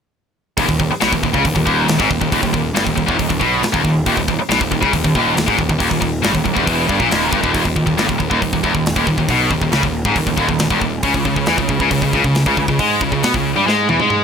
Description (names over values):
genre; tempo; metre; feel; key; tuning
heavy metal; 138 BPM; 4/4; straight; unclear; A4 = 440 Hz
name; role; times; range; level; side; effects
scooped high-gain guitar; riff; 0.6-14.2 s; Eb2 to Cb4; -15 LUFS; equal; distortion
fuzz picked electric bass; bass; 0.6-14.2 s; Eb1 to Cb3; -22 LUFS; equal; overdrive
tight metal drum kit; drums; 0.6-14.2 s; hi-hat, kick drum, snare drum, toms; -21 LUFS; equal; none
room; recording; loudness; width
little or no reverb; none; -14 LUFS; side -7 dB against mid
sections
0.6-7.5 A section; 7.5-14.2 B section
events
drum fill 13.7-14.2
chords
0.6 N.C.; 11.0 Db5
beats
| 0.58 1.01 1.45 1.88 | 2.32 2.75 3.19 3.62 | 4.06 4.49 4.93 5.36 | 5.80 6.23 6.67 7.11 | 7.54 7.98 8.41 8.85 | 9.29 9.72 10.16 10.60 | 11.04 11.47 11.91 12.35 | 12.79 13.23 13.66 14.10